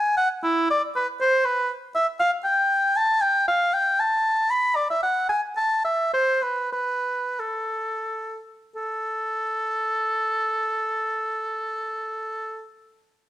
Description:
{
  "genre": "classical, baroque-style fantasia for unaccompanied oboe",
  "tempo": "84-120 BPM",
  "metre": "3/4",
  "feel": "rubato",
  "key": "A minor",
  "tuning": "A4 = 441 Hz",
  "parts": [
    { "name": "warm oboe", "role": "solo", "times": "0.0-12.7 s", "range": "E4 to B5", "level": "-21 LUFS", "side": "equal", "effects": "none" }
  ],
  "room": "moderate stone room reverb, RT60 1.1 s",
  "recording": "heard from further back in the room",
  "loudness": "-21 LUFS",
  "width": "side -13 dB against mid",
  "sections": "0.0-8.8 A section; 8.8-12.8 B section",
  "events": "slowing down 4.2-8.8",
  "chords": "none"
}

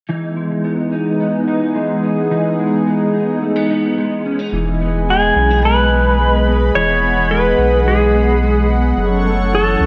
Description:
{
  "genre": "dream pop",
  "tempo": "108 BPM",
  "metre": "4/4",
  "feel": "straight",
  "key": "E major",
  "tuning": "A4 = 440 Hz",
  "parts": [
    { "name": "warm analog pad", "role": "sustained chords", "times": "0.1-9.9 s", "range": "E3 to C#6", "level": "-21 LUFS", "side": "equal", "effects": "chorus" },
    { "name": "clean electric guitar", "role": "arpeggios", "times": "0.1-9.9 s", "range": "F#2 to D#4", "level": "-22 LUFS", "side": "equal", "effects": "ensemble chorus, analog delay" },
    { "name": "warm sub bass", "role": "bass", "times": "4.5-9.9 s", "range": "E1 to C#2", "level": "-19 LUFS", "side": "equal", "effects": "none" },
    { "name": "clean lap steel guitar", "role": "melody", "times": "5.1-9.9 s", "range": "G#4 to C#5", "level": "-18 LUFS", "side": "equal", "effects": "analog delay" }
  ],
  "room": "moderate plate reverb, RT60 2.5 s",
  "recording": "echo-heavy mix",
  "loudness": "-15 LUFS",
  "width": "mono",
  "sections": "0.1-4.5 A section; 4.5-9.9 B section",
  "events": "none",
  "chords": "0.1 Emaj7; 9.0 F#m7"
}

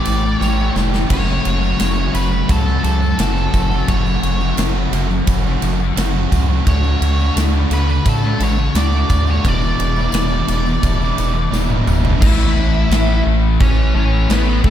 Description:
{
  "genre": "rock, shoegaze and dream pop",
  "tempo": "86 BPM",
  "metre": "4/4",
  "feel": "straight",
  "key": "A major",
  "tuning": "A4 = 438 Hz",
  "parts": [
    { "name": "octave-fuzz lead guitar", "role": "melody", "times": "0.0-14.7 s", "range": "A3 to D5", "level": "-23 LUFS", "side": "equal", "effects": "distortion, analog delay" },
    { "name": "biting overdriven guitar", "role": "riff", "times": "0.0-12.2 s", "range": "E2 to G4", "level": "-24 LUFS", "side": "right 11 dB", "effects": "reverse reverb" },
    { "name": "thick fuzz guitar", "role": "riff", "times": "0.0-14.7 s", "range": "E2 to D4", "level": "-21 LUFS", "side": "left 7 dB", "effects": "distortion, analog chorus" },
    { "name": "gritty driven synth bass", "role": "bass", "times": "0.1-14.7 s", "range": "E1 to A2", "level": "-17 LUFS", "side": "equal", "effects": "none" },
    { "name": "big rock drum kit", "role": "drums", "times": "0.1-14.7 s", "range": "crash cymbal, kick drum, ride cymbal, snare drum, toms", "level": "-21 LUFS", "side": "equal", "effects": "none" },
    { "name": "tambourine", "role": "percussion", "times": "0.1-12.1 s", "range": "none", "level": "-39 LUFS", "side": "left 12 dB", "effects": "none" }
  ],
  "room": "light reverb",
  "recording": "none",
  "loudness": "-14 LUFS",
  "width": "side -10 dB against mid",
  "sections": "0.0-12.2 A section; 12.2-14.7 B section",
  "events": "drum fill 0.4-1.1, 11.5-12.2",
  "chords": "0.0 A7sus4; 1.1 F#m; 6.7 Dmaj7; 9.4 E7; 12.2 A"
}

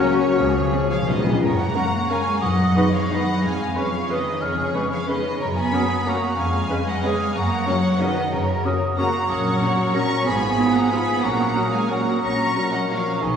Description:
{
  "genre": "classical, orchestral ballroom waltz",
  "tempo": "165-201 BPM",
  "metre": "3/4",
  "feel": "rubato",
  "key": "F# major",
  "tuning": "A4 = 440 Hz",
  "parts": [
    { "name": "warm symphonic violin section", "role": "melody", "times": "0.0-13.4 s", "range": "C#5 to C#6", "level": "-28 LUFS", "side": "left 2 dB", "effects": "none" },
    { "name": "dark cor anglais", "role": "second line", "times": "0.0-13.4 s", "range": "G#4 to B4", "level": "-32 LUFS", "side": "equal", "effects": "none" },
    { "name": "mellow clarinet", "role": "second line", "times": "0.0-13.4 s", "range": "Cb4 to D#4", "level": "-32 LUFS", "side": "left 1 dB", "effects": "none" },
    { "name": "mellow hollow silver concert flute", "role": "second line", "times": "0.0-13.4 s", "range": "F#4 to E#6", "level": "-27 LUFS", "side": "equal", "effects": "none" },
    { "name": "warm symphonic violin section", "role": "second line", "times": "0.0-13.4 s", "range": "C#4 to A#5", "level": "-29 LUFS", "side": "left 1 dB", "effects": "none" },
    { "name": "mellow bassoon", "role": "accompaniment", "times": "0.0-13.4 s", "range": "D#3 to A#3", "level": "-31 LUFS", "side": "left 1 dB", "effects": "none" },
    { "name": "warm symphonic viola section", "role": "accompaniment", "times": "0.0-13.0 s", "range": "E#3 to B4", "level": "-31 LUFS", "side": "equal", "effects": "none" },
    { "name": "dark French horn section", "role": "sustained chords", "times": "0.0-13.0 s", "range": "C#3 to B4", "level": "-35 LUFS", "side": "left 4 dB", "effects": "none" },
    { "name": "mellow trombone section", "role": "sustained chords", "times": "0.0-13.0 s", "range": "Ab2 to A#3", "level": "-32 LUFS", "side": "right 1 dB", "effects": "none" },
    { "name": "warm trumpet", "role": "stabs", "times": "0.0-1.1 s", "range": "C#4", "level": "-30 LUFS", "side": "left 2 dB", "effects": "none" },
    { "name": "clear symphonic double bass section", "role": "bass", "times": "0.4-13.4 s", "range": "Ab1 to F#2", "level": "-28 LUFS", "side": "equal", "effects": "none" },
    { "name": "warm symphonic cello section", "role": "bass", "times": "0.4-13.4 s", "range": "C#3 to C#4", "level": "-25 LUFS", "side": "right 1 dB", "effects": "none" },
    { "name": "timpani", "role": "percussion", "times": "0.4-2.9 s", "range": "F#2 to C#3", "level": "-26 LUFS", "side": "left 2 dB", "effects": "none" }
  ],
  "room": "wet scoring stage reverb, RT60 2.0 s",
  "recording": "recorded in a church or concert hall",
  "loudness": "-19 LUFS",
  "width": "side -7 dB against mid",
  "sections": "0.0-1.4 A section; 1.4-13.4 B section",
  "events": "timpani fill 0.4-1.4",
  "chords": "0.4 C#; 1.4 F#; 2.4 G#m7/F#; 3.4 C#7/E#; 5.4 F#; 6.4 C#7/E#; 7.3 F#; 9.3 F#/A#; 10.3 Fdim/Ab; 11.2 F#/A#"
}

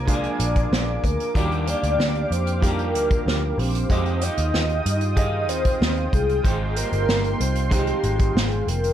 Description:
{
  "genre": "indie pop, bedroom pop",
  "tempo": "94 BPM",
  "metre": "4/4",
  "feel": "straight",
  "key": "Eb major",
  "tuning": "A4 = 442 Hz",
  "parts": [
    { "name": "electric guitar through a small old amp", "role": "accompaniment", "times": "0.0-8.9 s", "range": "F2 to Ab4", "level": "-31 LUFS", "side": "left 1 dB", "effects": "lush chorus, warbly pitch drift" },
    { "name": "warm upright piano", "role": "accompaniment", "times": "0.0-8.9 s", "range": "Gb3 to G5", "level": "-32 LUFS", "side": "right 4 dB", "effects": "cassette tape" },
    { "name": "lush unison pad", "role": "sustained chords", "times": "0.0-8.9 s", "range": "F4 to Eb6", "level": "-32 LUFS", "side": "equal", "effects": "chorus" },
    { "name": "vintage muted picked electric bass", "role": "bass", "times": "0.0-8.9 s", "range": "F1 to G2", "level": "-24 LUFS", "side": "equal", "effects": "none" },
    { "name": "soft octave-layered synth lead", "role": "melody", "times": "0.1-8.9 s", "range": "G4 to Eb5", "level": "-26 LUFS", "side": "equal", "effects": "phaser, ensemble chorus, tape echo" },
    { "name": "unplugged drum kit", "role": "drums", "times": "0.1-8.9 s", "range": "hi-hat, kick drum, snare drum", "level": "-24 LUFS", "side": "equal", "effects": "none" }
  ],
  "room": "light reverb",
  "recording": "none",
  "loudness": "-19 LUFS",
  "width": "side -10 dB against mid",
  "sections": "0.0-8.9 A section",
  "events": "none",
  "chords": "0.0 Bb7; 1.4 Ebmaj9; 3.9 Fm9; 6.4 Abmaj7"
}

